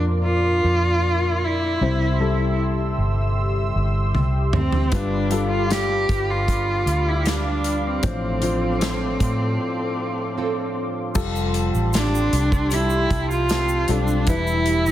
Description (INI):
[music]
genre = pop ballad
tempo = 77 BPM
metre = 4/4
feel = straight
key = unclear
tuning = A4 = 440 Hz
[part]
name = warm cello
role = melody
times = 0.0-14.9 s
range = C4 to G4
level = -23 LUFS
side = equal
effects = none
[part]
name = dark upright piano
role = accompaniment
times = 0.0-14.9 s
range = G2 to C5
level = -27 LUFS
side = left 4 dB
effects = none
[part]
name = warm analog pad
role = sustained chords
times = 0.0-14.9 s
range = G4 to E6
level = -30 LUFS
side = equal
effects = chorus
[part]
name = vintage muted fingered electric bass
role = bass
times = 0.0-14.9 s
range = E1 to A2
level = -23 LUFS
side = equal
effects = none
[part]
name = natural country drum kit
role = drums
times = 4.1-14.8 s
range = crash cymbal, hi-hat, kick drum, snare drum, toms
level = -25 LUFS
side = equal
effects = soft clipping on kick
[part]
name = fingerpicked plugged-in steel-string acoustic guitar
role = arpeggios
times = 4.9-14.9 s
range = A2 to B4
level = -31 LUFS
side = right 7 dB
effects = none
[part]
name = egg shaker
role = percussion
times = 11.2-14.9 s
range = none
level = -38 LUFS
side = right 8 dB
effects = none
[sound]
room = light reverb, small room ambience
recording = dense, heavily limited modern master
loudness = -19 LUFS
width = side -12 dB against mid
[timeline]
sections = 0.0-11.2 A section; 11.2-14.9 B section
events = drum fill 4.1-4.9; break 9.6-11.2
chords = 0.0 Bbadd9; 1.8 C; 4.9 G7; 8.0 Dm7/A; 11.2 Fadd9; 14.3 Em